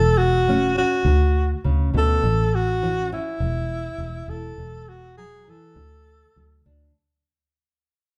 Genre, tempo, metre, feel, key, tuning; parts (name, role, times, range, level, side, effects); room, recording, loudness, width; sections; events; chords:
highlife guitar band; 102 BPM; 4/4; swing 54% on 16ths; A major; A4 = 440 Hz
breathy alto saxophone; melody; 0.0-6.7 s; E4 to A4; -25 LUFS; equal
nylon-string guitar; accompaniment; 0.0-6.9 s; A2 to E4; -31 LUFS; equal
fingered electric bass; bass; 0.0-6.9 s; E1 to D2; -24 LUFS; equal
moderate large studio reverb, RT60 1.2 s; band playing live in one room; -21 LUFS; mono
0.0-6.9 A section
fade-out 0.0-6.9
0.0 A6/E; 1.1 D; 2.2 A6; 3.4 E; 4.6 Eadd9; 5.8 D